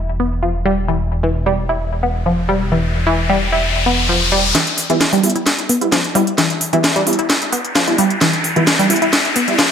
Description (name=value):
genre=driving peak-time techno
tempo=131 BPM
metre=4/4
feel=straight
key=E phrygian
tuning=A4 = 440 Hz
part: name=dark detuned saw bass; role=bass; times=0.0-4.5 s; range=E1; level=-20 LUFS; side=equal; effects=none
part: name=analog pluck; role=riff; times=0.2-9.6 s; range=E3 to E4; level=-18 LUFS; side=equal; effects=chorus, phaser, tube saturation, ping-pong delay
part: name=riser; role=sound effects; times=2.4-9.7 s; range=none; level=-21 LUFS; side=left 2 dB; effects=none
part: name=techno drum kit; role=drums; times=4.5-9.7 s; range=hi-hat, snare drum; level=-16 LUFS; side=equal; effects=overdrive, gated reverb
part: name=rave stab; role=stabs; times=4.9-9.5 s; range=G3 to E4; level=-21 LUFS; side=right 2 dB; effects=chorus, built-in reverb, ping-pong delay
room=moderate plate reverb, RT60 1.4 s, digital ambience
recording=bright 1980s-style digital production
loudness=-13 LUFS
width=side -8 dB against mid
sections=0.0-4.5 A section; 4.5-9.7 B section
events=filter sweep on synth arpeggio sound 0.0-4.5; riser 2.4-4.5, 4.5-9.7; build-up 4.5-9.7; drum fill 4.5-9.7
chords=0.0 N.C.; 4.5 Em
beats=0.43 | 0.89 1.34 1.80 2.26 | 2.72 3.17 3.63 4.09 | 4.55 5.01 5.46 5.92 | 6.38 6.84 7.30 7.75 | 8.21 8.67 9.13 9.59